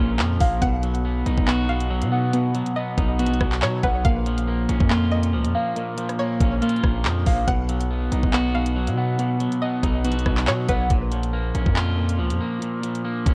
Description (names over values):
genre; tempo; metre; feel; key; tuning
hip hop, drill; 140 BPM; 4/4; half-time; Bb phrygian; A4 = 440 Hz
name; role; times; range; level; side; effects
string-like resonator pluck; second line; 0.0-10.9 s; B4 to F#5; -34 LUFS; equal; chorus, tape echo
electric guitar at the edge of break-up; accompaniment; 0.0-13.3 s; Bb2 to F#4; -29 LUFS; equal; low-pass filter
muted felt-like synth keys; arpeggios; 0.0-10.9 s; Bb3 to F#5; -28 LUFS; equal; chorus, low-pass filter, tape echo
distorted 808-style bass; bass; 0.0-13.3 s; Bb1 to B2; -26 LUFS; equal; distortion
drill drum kit; drums; 0.2-13.3 s; handclaps, hi-hat, kick drum, rim click; -26 LUFS; equal; none
room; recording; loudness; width
little or no reverb; worn, warbling old tape, cassette tape, warbly pitch drift; -22 LUFS; mono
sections
0.0-10.9 A section; 10.9-13.3 B section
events
none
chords
0.0 Bbm; 0.6 B; 4.0 Bbm; 7.5 B; 10.9 Bbm